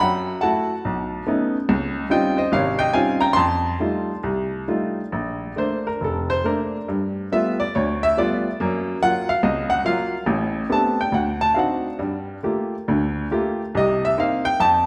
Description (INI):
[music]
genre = solo jazz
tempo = 140 BPM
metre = 4/4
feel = swing 67% on 8ths, rubato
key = Bb major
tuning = A4 = 438 Hz
[part]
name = clear upright piano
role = solo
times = 0.0-14.9 s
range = F1 to C6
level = -22 LUFS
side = equal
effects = none
[sound]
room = wet recital hall reverb, RT60 1.6 s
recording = recorded in a church or concert hall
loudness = -22 LUFS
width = mono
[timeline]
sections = 0.0-5.1 A section; 5.1-14.9 B section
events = upright piano solo 5.1-14.9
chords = 0.0 Gbm7; 0.8 B9; 1.7 Dbmaj9#11; 3.4 F9; 5.1 Bbmaj7; 6.9 G9; 8.6 Gbmaj7; 10.3 Am11; 11.1 D7b9; 12.0 Gm9; 13.7 Cm7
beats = 0.41 0.83 1.26 | 1.68 2.10 2.52 2.94 | 3.37 3.79 4.23 4.68 | 5.13 5.57 6.01 6.45 | 6.88 7.32 7.74 8.17 | 8.59 9.01 9.43 9.84 | 10.26 10.69 11.12 11.56 | 11.99 12.43 12.87 13.30 | 13.73 14.16 14.59